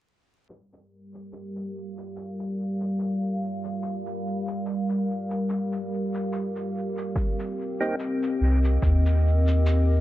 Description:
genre	ambient dub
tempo	72 BPM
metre	4/4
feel	swing 56% on 16ths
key	G minor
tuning	A4 = 441 Hz
part	warbly tape-like pad	sustained chords	1.2-10.0 s	G3 to F5	-28 LUFS	equal	chorus, built-in reverb
part	cabasa	drums	0.5-9.8 s	none	-46 LUFS	left 1 dB	dub echo
part	electronic kick drum	drums	7.2-9.0 s	none	-27 LUFS	equal	none
part	percussive tonewheel organ	stabs	7.8-8.0 s	Bb3 to G4	-32 LUFS	right 2 dB	slow rotary speaker, dub echo
part	soft dub sub bass	bass	8.4-10.0 s	C2 to Eb2	-19 LUFS	equal	none
room	light reverb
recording	vinyl crackle, low-pass filter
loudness	-24 LUFS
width	side -15 dB against mid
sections	0.5-10.0 A section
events	filter sweep on ambient pad 0.5-10.0; filter sweep 0.5-10.0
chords	0.5 Gm7; 7.2 Cm7

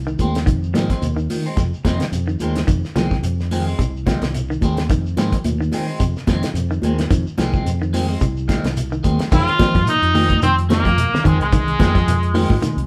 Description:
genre	afrobeat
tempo	108 BPM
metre	4/4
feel	swing 55% on 16ths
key	F minor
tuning	A4 = 440 Hz
part	fingered electric bass	bass	0.0-12.9 s	C2 to F3	-24 LUFS	equal	none
part	semi-hollow electric guitar	arpeggios	0.1-12.9 s	C3 to F3	-28 LUFS	equal	none
part	shekere	percussion	0.1-12.8 s	none	-32 LUFS	equal	none
part	electric guitar at the edge of break-up	stabs	0.2-12.5 s	Eb3 to C4	-28 LUFS	equal	phaser
part	damped 70s drum kit	drums	0.2-12.9 s	crash cymbal, hi-hat, kick drum, snare drum	-23 LUFS	equal	none
part	congas	percussion	0.2-12.8 s	none	-26 LUFS	equal	none
part	trombone with metal mute	melody	9.3-12.9 s	Ab3 to F4	-22 LUFS	equal	none
part	breathy trumpet	second line	9.3-12.9 s	Ab3 to F4	-30 LUFS	equal	none
room	moderate studio reverb, RT60 0.8 s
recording	band playing live in one room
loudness	-18 LUFS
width	mono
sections	0.0-9.3 A section; 9.3-12.9 B section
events	none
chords	0.0 Fm7

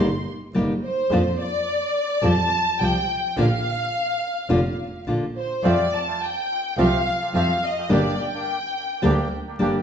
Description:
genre	tango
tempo	106 BPM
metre	4/4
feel	rubato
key	Bb major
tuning	A4 = 440 Hz
part	warm studio violin section	second line	0.0-9.3 s	C5 to C6	-24 LUFS	left 1 dB	none
part	nylon-string guitar	accompaniment	0.0-9.8 s	C3 to G4	-23 LUFS	left 1 dB	none
part	rich double bass	bass	0.0-9.8 s	F1 to F2	-26 LUFS	right 1 dB	none
part	bandoneon	stabs	5.6-9.8 s	A3 to G4	-28 LUFS	right 5 dB	analog delay
room	wet stone room reverb, RT60 1.2 s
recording	band playing live in one room, vinyl crackle, nothing above 7.9 kHz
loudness	-20 LUFS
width	side -8 dB against mid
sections	0.0-9.8 A section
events	violin section solo 0.0-9.8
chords	0.0 Cm7/G; 1.1 Bb/F (rootless); 2.2 Fadd9; 3.4 Bb; 5.6 Fadd9; 7.9 Gm

